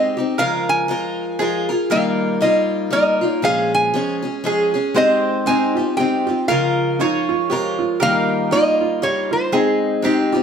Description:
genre	acoustic folk duo or small band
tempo	118 BPM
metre	3/4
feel	swing 58% on 8ths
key	Ab major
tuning	A4 = 439 Hz
part	lap resonator guitar	melody	0.0-10.4 s	C5 to Ab5	-19 LUFS	equal	plate reverb
part	mandolin	second line	0.0-10.4 s	G4 to Db5	-23 LUFS	right 3 dB	none
part	picked acoustic archtop guitar	accompaniment	0.0-10.4 s	Bb2 to Bb4	-20 LUFS	left 3 dB	none
part	felt-muted upright piano	arpeggios	5.0-10.4 s	Eb4 to G5	-23 LUFS	right 7 dB	none
room	moderate large studio reverb, RT60 0.8 s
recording	none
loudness	-16 LUFS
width	side -7 dB against mid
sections	0.0-10.4 A section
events	none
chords	0.4 Db6; 1.9 Ebadd9; 3.4 Bbm7; 5.0 Abmaj7; 6.5 Db6; 8.0 Ebadd9; 9.5 Abmaj7

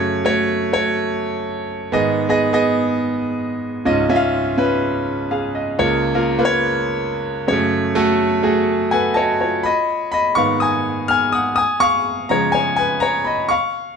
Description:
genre	pop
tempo	124 BPM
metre	4/4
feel	straight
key	Db mixolydian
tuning	A4 = 440 Hz
part	clear concert grand piano	solo	0.0-14.0 s	Db2 to F6	-16 LUFS	equal	none
room	moderate large studio reverb, RT60 0.9 s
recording	none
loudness	-16 LUFS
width	side -6 dB against mid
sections	0.0-9.6 A section; 9.6-14.0 B section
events	grand piano solo 9.6-14.0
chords	0.0 Gbm; 1.9 Abm; 3.9 Dbadd9; 5.8 Bbm/Db; 7.5 Gbm; 9.6 Abm; 11.6 Dbadd9

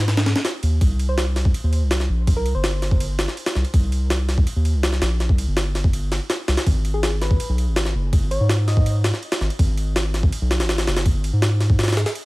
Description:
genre	drum and bass, jungle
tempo	164 BPM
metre	4/4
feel	straight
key	C minor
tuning	A4 = 440 Hz
part	soft dub sub bass	bass	0.0-12.0 s	Gb1 to Ab2	-20 LUFS	equal	none
part	jungle sampler-style drum kit	drums	0.1-12.2 s	kick drum, ride cymbal, snare drum	-21 LUFS	equal	small room ambience
part	soft struck synth lead	melody	1.1-3.1, 6.9-9.0 s	Ab4 to Eb5	-31 LUFS	equal	chorus, dub echo
room	little or no reverb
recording	vinyl crackle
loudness	-18 LUFS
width	side -21 dB against mid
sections	0.0-12.2 A section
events	break 11.8-12.2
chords	0.0 Ab5; 0.8 C5; 6.7 N.C.

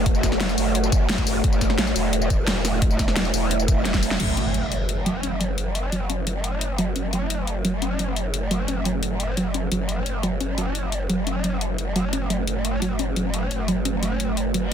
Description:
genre	dark technical drum and bass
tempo	174 BPM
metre	4/4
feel	straight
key	F# minor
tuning	A4 = 439 Hz
part	deep dark ambient pad	sustained chords	0.0-14.7 s	A3 to E5	-28 LUFS	right 2 dB	chorus, built-in reverb, sidechain pumping
part	growl bass	bass	0.0-14.7 s	E1 to A1	-26 LUFS	equal	distortion, chorus, sidechain pumping
part	dubstep drum kit	drums	0.1-14.6 s	crash cymbal, hi-hat, snare drum, tambourine	-27 LUFS	left 2 dB	none
part	electronic kick drum	drums	0.1-4.0 s	none	-21 LUFS	equal	overdrive
part	warbly dusty pluck	arpeggios	4.2-14.6 s	F#3 to C#4	-27 LUFS	right 1 dB	chorus, sidechain pumping, digital delay
part	impact and reverse cymbal	sound effects	4.2-5.6, 14.6-14.7 s	none	-29 LUFS	equal	none
room	light reverb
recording	dense, heavily limited modern master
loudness	-21 LUFS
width	side -8 dB against mid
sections	0.0-4.2 A section; 4.2-14.7 B section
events	drop 0.0-4.2; drum fill 3.9-4.2; band accent 4.1; impact 4.2-5.6; filter sweep on ambient pad 4.2-14.7; filter sweep on synth arpeggio sound 4.2-14.7; reverse cymbal 14.6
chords	0.0 F#m

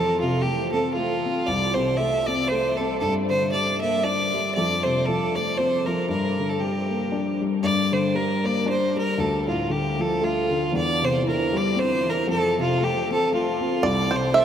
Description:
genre	celtic folk, Celtic waltz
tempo	117 BPM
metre	3/4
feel	swing 56% on 8ths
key	G dorian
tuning	A4 = 439 Hz
part	clear fiddle	melody	0.0-14.4 s	F4 to E5	-23 LUFS	right 1 dB	none
part	dark baby grand piano	accompaniment	0.0-14.4 s	C2 to D4	-24 LUFS	left 2 dB	none
part	bluegrass banjo	second line	13.8-14.4 s	C5 to E5	-20 LUFS	right 4 dB	none
room	wet huge ambient reverb, RT60 9.2 s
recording	in a vast, echoing space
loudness	-21 LUFS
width	side -9 dB against mid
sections	0.0-7.6 A section; 7.6-14.4 A section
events	none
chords	0.0 F; 3.0 Gm; 4.6 F; 6.1 Gm; 9.2 Dm; 10.7 C/E; 12.3 F

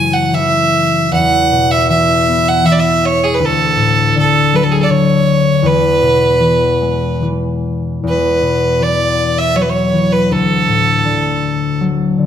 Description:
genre	celtic folk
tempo	72-82 BPM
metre	3/4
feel	rubato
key	E mixolydian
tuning	A4 = 440 Hz
part	clear fiddle	melody	0.0-11.8 s	G#4 to G#5	-13 LUFS	right 3 dB	none
part	concert harp	accompaniment	0.0-12.3 s	D2 to B3	-14 LUFS	left 3 dB	none
room	moderate scoring stage reverb, RT60 1.6 s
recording	none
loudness	-11 LUFS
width	side -9 dB against mid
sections	0.0-8.0 A section; 8.0-12.3 B section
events	none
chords	0.0 F#m7; 1.1 Esus2; 3.4 D; 5.6 E; 8.0 Esus2; 10.3 D

